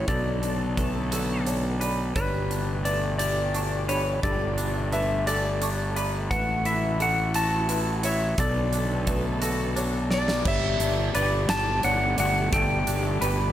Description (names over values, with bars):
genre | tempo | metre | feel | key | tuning
post-rock | 58 BPM (dotted quarters) | 6/8 | straight | G lydian | A4 = 440 Hz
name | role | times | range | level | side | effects
clean lap steel guitar | melody | 0.0-13.5 s | B4 to A5 | -28 LUFS | left 1 dB | analog delay
muted studio string section | sustained chords | 0.0-13.5 s | B2 to A4 | -36 LUFS | left 1 dB | none
felt-muted upright piano | arpeggios | 0.0-13.5 s | D4 to C#6 | -37 LUFS | right 2 dB | analog delay
twangy electric guitar | arpeggios | 0.0-13.5 s | B2 to D5 | -32 LUFS | left 2 dB | analog chorus, analog delay
fuzz fingered electric bass | bass | 0.0-13.5 s | G1 to B1 | -27 LUFS | equal | overdrive
huge arena drum kit | drums | 0.1-13.4 s | crash cymbal, hi-hat, kick drum, snare drum | -31 LUFS | right 1 dB | none
room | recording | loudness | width
light reverb, small room ambience | none | -23 LUFS | side -12 dB against mid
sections
0.0-10.5 A section; 10.5-13.5 B section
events
drum fill 10.1-10.5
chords
0.1 Bm7; 2.2 Gadd9; 6.3 F#m7/A; 8.4 Bm7; 10.5 Gadd9